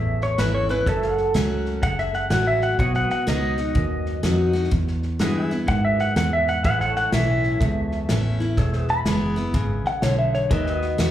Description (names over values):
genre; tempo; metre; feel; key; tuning
honky-tonk and classic country; 124 BPM; 4/4; swing 64% on 8ths; A major; A4 = 440 Hz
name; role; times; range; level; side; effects
pedal steel guitar; melody; 0.0-11.1 s; A4 to B5; -24 LUFS; equal; plate reverb, slapback echo
picked steel-string acoustic guitar; accompaniment; 0.0-11.1 s; E2 to F#4; -27 LUFS; left 2 dB; plate reverb, slapback echo
pedal steel guitar; sustained chords; 0.0-11.1 s; F#4 to F#5; -32 LUFS; right 2 dB; plate reverb
fingered electric bass; bass; 0.0-11.1 s; E1 to G#2; -24 LUFS; right 1 dB; none
unplugged drum kit; drums; 0.2-11.1 s; hi-hat, kick drum, snare drum; -27 LUFS; equal; none
room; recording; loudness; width
light reverb; live gig heard through the venue's PA, club reverb; -19 LUFS; side -12 dB against mid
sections
0.0-11.1 A section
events
pedal steel guitar solo 0.0-11.1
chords
0.0 A; 0.9 F#m; 2.8 B; 4.7 E; 6.7 A; 8.6 E; 10.5 B7/D#